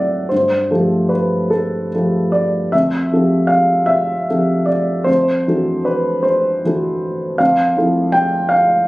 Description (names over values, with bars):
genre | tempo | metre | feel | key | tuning
classical, impressionist solo piano | 51 BPM (dotted quarters) | 6/8 | uneven beats, rubato | unclear | A4 = 442 Hz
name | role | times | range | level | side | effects
clear grand piano | solo | 0.0-8.9 s | F2 to G5 | -14 LUFS | equal | none
room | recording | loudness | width
light reverb | recorded on a phone in the room, studio reverb, compression | -14 LUFS | side -19 dB against mid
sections
0.0-8.9 A section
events
none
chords
0.3 G9sus4; 2.7 Fmaj9; 5.1 D9/F; 7.4 Fmaj7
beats
| 0.31 1.52 | 2.73 3.89 | 5.08 6.26 | 7.40 8.52